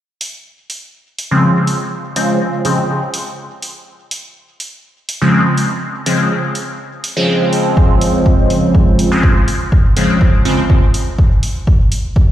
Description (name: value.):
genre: dub techno.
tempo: 123 BPM.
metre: 4/4.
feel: straight.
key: unclear.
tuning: A4 = 440 Hz.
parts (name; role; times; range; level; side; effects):
electronic hi-hat; drums; 0.2-12.0 s; none; -25 LUFS; right 1 dB; none.
resonant sweep polysynth; stabs; 1.3-10.6 s; Db3 to C4; -14 LUFS; equal; chorus, phaser, sidechain pumping, dub echo.
electronic kick drum; drums; 7.8-12.3 s; none; -12 LUFS; equal; none.
room: moderate echo chamber reverb, RT60 1.8 s.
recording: played on a big sound system in a bare room, large studio reverb.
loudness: -12 LUFS.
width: side -12 dB against mid.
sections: 0.0-12.3 A section.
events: filter sweep on analog polysynth 0.0-12.3.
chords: 0.0 Dbmaj7.